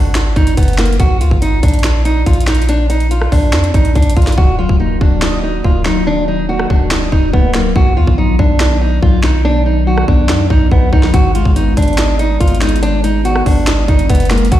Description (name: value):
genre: hip hop, trap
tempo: 142 BPM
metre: 4/4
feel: half-time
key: unclear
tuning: A4 = 440 Hz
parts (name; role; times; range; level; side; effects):
- fingerpicked steel-string acoustic guitar; melody; 0.0-14.6 s; Bb3 to Gb4; -17 LUFS; right 1 dB; low-pass filter, tape echo
- long sustained 808-style bass; bass; 0.0-14.6 s; D1 to F#2; -14 LUFS; equal; none
- trap drum kit; drums; 0.1-14.6 s; finger snaps, hi-hat, kick drum, rim click, snare drum; -14 LUFS; equal; none
- warbly lo-fi synth keys; accompaniment; 4.4-14.6 s; B2 to Eb5; -19 LUFS; left 3 dB; chorus, low-pass filter
room: little or no reverb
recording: played on a big sound system in a bare room, large studio reverb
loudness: -10 LUFS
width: side -13 dB against mid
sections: 0.0-14.6 A section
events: hi-hats muted 4.4-11.1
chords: 0.0 Gbsus2; 1.0 Bb; 4.4 Ebm; 7.8 B; 11.1 Abm